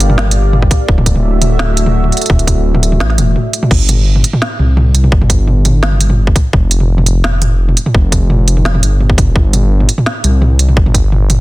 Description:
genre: half-time drum and bass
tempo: 170 BPM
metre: 4/4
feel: half-time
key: unclear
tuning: A4 = 441 Hz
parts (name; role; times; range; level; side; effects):
- dark analog pad; sustained chords; 0.0-3.7 s; A3 to F5; -19 LUFS; left 1 dB; chorus, sidechain pumping
- dark detuned saw bass; bass; 0.0-11.4 s; D1 to C2; -11 LUFS; equal; tube saturation
- organic electronic drum kit; drums; 0.0-11.4 s; crash cymbal, hi-hat, snare drum, toms; -15 LUFS; right 1 dB; studio reverb
- electronic kick drum; drums; 0.6-11.0 s; none; -11 LUFS; equal; overdrive, studio reverb
room: digital ambience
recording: dense, heavily limited modern master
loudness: -9 LUFS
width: side -19 dB against mid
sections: 0.0-3.7 A section; 3.7-11.4 A section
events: drop 0.0-3.7, 3.7-11.4; break 3.4-3.7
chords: 0.0 Gm7; 0.9 Dadd9; 3.7 Gsus4; 6.5 Ebadd9 (rootless); 9.4 Gsus4

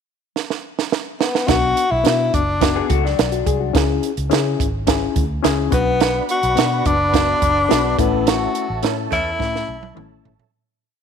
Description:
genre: uptempo 1960s-style soul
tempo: 106 BPM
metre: 4/4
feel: straight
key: B dorian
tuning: A4 = 440 Hz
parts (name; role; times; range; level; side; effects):
- compact cocktail drum kit; drums; 0.4-10.5 s; hi-hat, kick drum, snare drum, toms; -20 LUFS; right 6 dB; none
- breathy tenor saxophone; melody; 1.2-10.2 s; B3 to F#4; -19 LUFS; left 2 dB; none
- overdriven reed electric piano; accompaniment; 1.5-10.3 s; A3 to G#4; -23 LUFS; left 12 dB; phaser
- vintage muted fingered electric bass; bass; 1.5-10.4 s; F#1 to C#3; -24 LUFS; equal; none
- electric guitar through a small old amp; riff; 2.8-3.7 s; F#3 to G#4; -24 LUFS; left 12 dB; wide subtle chorus
- mellow tonewheel organ; sustained chords; 6.0-10.5 s; A4 to B5; -29 LUFS; right 13 dB; chorus vibrato, wide subtle chorus
- mellow horn section; second line; 8.8-9.3 s; E3 to A4; -30 LUFS; right 12 dB; none
room: light reverb, studio reverb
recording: 1960s-style stereo with parts hard left and right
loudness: -16 LUFS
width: side -7 dB against mid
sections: 0.0-1.5 pickup bar; 1.5-10.5 verse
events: drum fill 0.3-1.5, 9.4-10.5; fade-out 8.3-10.5; band accent 8.3-10.5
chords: 0.0 N.C.; 1.5 Bm; 3.7 C#m; 5.7 Bm; 8.0 A

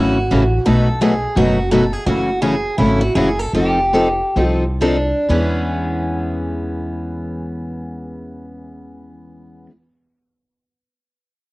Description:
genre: acoustic string swing (jazz manouche)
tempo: 119-170 BPM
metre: 4/4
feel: swing 61% on 8ths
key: E major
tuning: A4 = 440 Hz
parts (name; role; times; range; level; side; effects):
- picked steel-string acoustic guitar; second line; 0.0-9.7 s; B3 to A4; -22 LUFS; right 1 dB; cassette tape
- picked steel-string acoustic guitar; accompaniment; 0.0-9.7 s; B2 to A4; -19 LUFS; left 2 dB; cassette tape
- picked steel-string acoustic guitar; accompaniment; 0.0-9.7 s; B2 to B4; -25 LUFS; right 3 dB; cassette tape
- upright bass; bass; 0.0-9.7 s; F1 to E2; -21 LUFS; equal; none
room: moderate spring reverb, RT60 1.1 s, small room ambience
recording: home recording on cassette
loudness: -15 LUFS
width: side -21 dB against mid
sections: 0.0-5.3 A section; 5.3-9.3 B section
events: slowing down 2.1-5.3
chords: 0.0 F#m9; 0.7 B7; 2.1 F#m9; 3.5 F13; 5.3 E6

